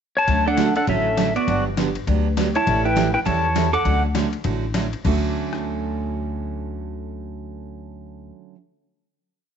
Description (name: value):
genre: country, western swing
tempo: 201 BPM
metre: 4/4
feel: swing 60% on 8ths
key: D major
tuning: A4 = 440 Hz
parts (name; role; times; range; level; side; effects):
- pedal steel guitar; melody; 0.2-4.0 s; F#4 to D6; -21 LUFS; left 2 dB; none
- picked steel-string acoustic guitar; accompaniment; 0.3-8.6 s; D3 to A4; -26 LUFS; right 11 dB; none
- upright bass; bass; 0.3-8.3 s; G1 to E2; -24 LUFS; left 2 dB; none
- boom bap sampler-style drum kit; drums; 0.3-5.6 s; crash cymbal, hi-hat, kick drum, ride cymbal, rim click, snare drum; -29 LUFS; left 9 dB; overdrive
- archtop guitar, miked and amplified; second line; 0.5-4.0 s; B3 to A4; -26 LUFS; right 10 dB; none
room: light reverb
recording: 1960s-style stereo with parts hard left and right, nothing above 7.9 kHz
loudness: -19 LUFS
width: side -8 dB against mid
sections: 0.0-0.3 pickup bar; 0.3-5.0 A section; 5.0-7.4 final chord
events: none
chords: 0.3 Dmaj7; 1.5 Gmaj7; 2.7 A7; 3.9 Dmaj7